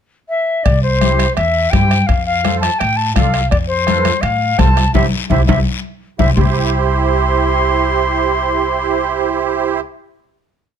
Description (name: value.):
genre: latin, cumbia.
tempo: 168 BPM.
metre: 4/4.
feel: straight.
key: C major.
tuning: A4 = 440 Hz.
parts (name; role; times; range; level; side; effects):
reedy silver concert flute; melody; 0.3-9.8 s; C5 to C6; -18 LUFS; left 3 dB; none.
upright bass; bass; 0.7-9.8 s; C2 to A2; -18 LUFS; equal; none.
bombo; percussion; 0.7-6.5 s; none; -19 LUFS; left 1 dB; none.
guiro; percussion; 0.7-6.5 s; none; -28 LUFS; left 8 dB; none.
timbales; percussion; 0.7-6.5 s; none; -26 LUFS; right 8 dB; none.
musette accordion; accompaniment; 1.0-9.8 s; E4 to D5; -18 LUFS; right 10 dB; none.
congas; percussion; 1.0-6.5 s; none; -20 LUFS; left 5 dB; none.
room: little or no reverb.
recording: close, detailed microphones.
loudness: -13 LUFS.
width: side -8 dB against mid.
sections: 0.0-0.7 pickup bar; 0.7-6.4 A section; 6.4-9.2 final chord.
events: band accent 4.9-6.4; drum fill 5.3-6.4; accordion fill 5.7-6.4.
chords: 0.0 N.C.; 0.7 C; 2.1 F; 4.9 C.